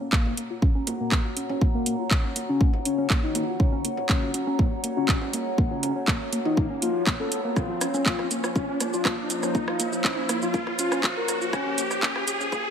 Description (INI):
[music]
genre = melodic techno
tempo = 121 BPM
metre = 4/4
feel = straight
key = unclear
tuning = A4 = 441 Hz
[part]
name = dark analog pad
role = sustained chords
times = 0.1-12.7 s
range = F3 to Bb5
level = -33 LUFS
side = left 1 dB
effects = chorus, phaser, sidechain pumping
[part]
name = woody wave-folded pluck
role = arpeggios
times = 0.0-12.6 s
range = Bb3 to F4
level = -32 LUFS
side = right 1 dB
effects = chorus, sidechain pumping, ping-pong delay
[part]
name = riser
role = sound effects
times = 2.4-12.7 s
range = none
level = -32 LUFS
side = equal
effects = none
[part]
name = soft octave-layered synth lead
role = melody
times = 0.1-12.2 s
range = Bb3 to Bb4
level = -30 LUFS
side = left 3 dB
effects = chorus, sidechain pumping, ping-pong delay
[part]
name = electronic kick drum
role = drums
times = 0.1-12.6 s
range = none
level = -23 LUFS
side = equal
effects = none
[part]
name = house drum kit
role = drums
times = 0.1-12.6 s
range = handclaps, hi-hat, rim click, shaker, toms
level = -28 LUFS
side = right 1 dB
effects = high-pass filter on perc, high-pass filter on snare, high-pass filter on toms, high-pass filter on hats, high-pass filter on room
[sound]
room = light reverb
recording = high-pass filter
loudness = -22 LUFS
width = side -8 dB against mid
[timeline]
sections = 0.0-12.7 A section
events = build-up 0.0-12.7; filter sweep on synth pluck 0.0-12.7; filter sweep 0.0-12.7; riser 2.4-12.7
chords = 0.0 Gb; 7.6 Bbm/F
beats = 0.13 0.62 1.12 | 1.61 2.11 2.61 3.10 | 3.60 4.09 4.59 5.09 | 5.58 6.08 6.57 7.07 | 7.57 8.06 8.56 9.05 | 9.55 10.04 10.54 11.04 | 11.53 12.03 12.52